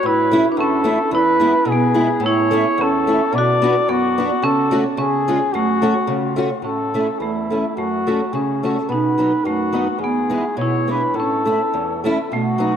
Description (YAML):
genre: alpine folk, alpine dance band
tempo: 108 BPM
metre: 2/4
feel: swing 54% on 8ths, rubato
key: F# minor, A major from 6.6 s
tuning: A4 = 440 Hz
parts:
  - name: warm flugelhorn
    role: melody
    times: 0.0-12.8 s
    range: E4 to D5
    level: -20 LUFS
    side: left 2 dB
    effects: diffuse ambient delay
  - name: fingerpicked acoustic archtop guitar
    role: accompaniment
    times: 0.0-12.7 s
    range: E2 to F#4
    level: -21 LUFS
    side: left 1 dB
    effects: analog chorus
  - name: marimba with medium hard mallets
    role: second line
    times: 0.1-12.8 s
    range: A3 to F#4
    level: -21 LUFS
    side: right 4 dB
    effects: none
room: wet plate reverb, RT60 3.0 s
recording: dreamy mix soaked in reverb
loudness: -16 LUFS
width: side -8 dB against mid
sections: 0.0-6.6 A section; 6.6-12.8 B section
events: none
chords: 0.0 A; 1.1 E; 2.2 A; 3.3 Bm; 4.4 F#m/C#; 5.0 C#; 5.5 F#m; 6.6 A; 7.8 F#m; 8.9 B7; 10.0 E; 11.2 A